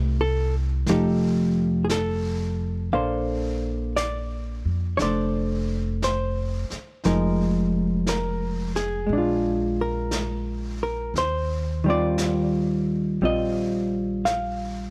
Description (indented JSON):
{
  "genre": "jazz ballad",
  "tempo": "58 BPM",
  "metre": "4/4",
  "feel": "swing 67% on 8ths",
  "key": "Bb major",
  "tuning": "A4 = 440 Hz",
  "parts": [
    { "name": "hollow-body jazz guitar", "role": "accompaniment", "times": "0.0-14.9 s", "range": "Eb3 to F5", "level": "-26 LUFS", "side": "equal", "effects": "none" },
    { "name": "upright bass", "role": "bass", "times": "0.0-14.9 s", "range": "F1 to F2", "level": "-29 LUFS", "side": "equal", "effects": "none" },
    { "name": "jazz brush drum kit", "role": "drums", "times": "0.9-14.9 s", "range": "brushed snare drum, hi-hat, snare drum", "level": "-38 LUFS", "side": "equal", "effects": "none" }
  ],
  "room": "little or no reverb",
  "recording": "none",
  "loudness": "-25 LUFS",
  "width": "mono",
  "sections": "0.0-2.9 A section; 2.9-14.9 B section",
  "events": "none",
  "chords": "0.0 Am9; 0.9 F9; 2.9 Bbmaj9; 7.0 Fm7; 9.1 Bb7; 11.1 Eb69",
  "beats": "0.86 1.90 | 2.93 3.96 4.99 6.01 | 7.04 8.07 9.09 10.12 | 11.15 12.17 13.20 14.23"
}